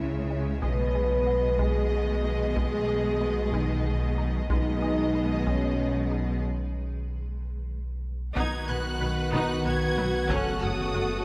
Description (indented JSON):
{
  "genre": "cinematic, hybrid orchestral and electronic film score",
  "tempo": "62 BPM (dotted quarters)",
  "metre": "6/8",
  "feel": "straight",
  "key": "unclear",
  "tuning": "A4 = 440 Hz",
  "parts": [
    { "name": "rich studio violin section", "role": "melody", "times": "0.0-11.2 s", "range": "D#5 to G#6", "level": "-40 LUFS", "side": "equal", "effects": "none" },
    { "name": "rich symphonic violin section", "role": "second line", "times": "0.0-11.2 s", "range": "A4 to F#5", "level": "-41 LUFS", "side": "equal", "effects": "none" },
    { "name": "clear symphonic viola section", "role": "accompaniment", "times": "0.0-11.2 s", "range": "F#3 to F#4", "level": "-37 LUFS", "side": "equal", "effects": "none" },
    { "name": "granular cloud pad", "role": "sustained chords", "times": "0.0-11.2 s", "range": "C#3 to C#5", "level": "-40 LUFS", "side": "equal", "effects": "built-in reverb" },
    { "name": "mellow French horn section", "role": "sustained chords", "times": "0.0-6.4, 9.3-11.2 s", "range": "C#4 to B4", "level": "-33 LUFS", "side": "equal", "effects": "none" },
    { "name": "pure sine sub bass", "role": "bass", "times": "0.0-11.2 s", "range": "F#1 to C#2", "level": "-35 LUFS", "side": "equal", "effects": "none" },
    { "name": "rich symphonic cello section", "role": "bass", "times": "0.0-11.0 s", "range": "F#2 to C#3", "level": "-38 LUFS", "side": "equal", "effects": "none" },
    { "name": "rich symphonic double bass section", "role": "bass", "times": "0.0-11.0 s", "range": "F#1 to C#2", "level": "-36 LUFS", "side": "equal", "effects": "none" },
    { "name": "resonant blip pluck", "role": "arpeggios", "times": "0.3-11.1 s", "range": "F#3 to B4", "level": "-42 LUFS", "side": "equal", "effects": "none" },
    { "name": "solo taiko drums", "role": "drums", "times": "0.6-10.9 s", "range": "none", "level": "-37 LUFS", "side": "equal", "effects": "none" },
    { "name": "clear trombone section", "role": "sustained chords", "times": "8.4-11.2 s", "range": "C#3 to B3", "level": "-37 LUFS", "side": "equal", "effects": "none" }
  ],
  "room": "wet concert hall reverb, RT60 2.2 s",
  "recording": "none",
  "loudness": "-27 LUFS",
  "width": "mono",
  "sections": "0.0-8.4 A section; 8.4-11.2 B section",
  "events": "break 6.4-8.4",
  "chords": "0.0 C#m; 0.6 G#m/B; 8.4 B; 10.3 F#m",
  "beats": "| 0.62 1.59 | 2.56 3.53 | 4.50 5.46 | 6.43 7.40 | 8.37 9.33 | 10.30"
}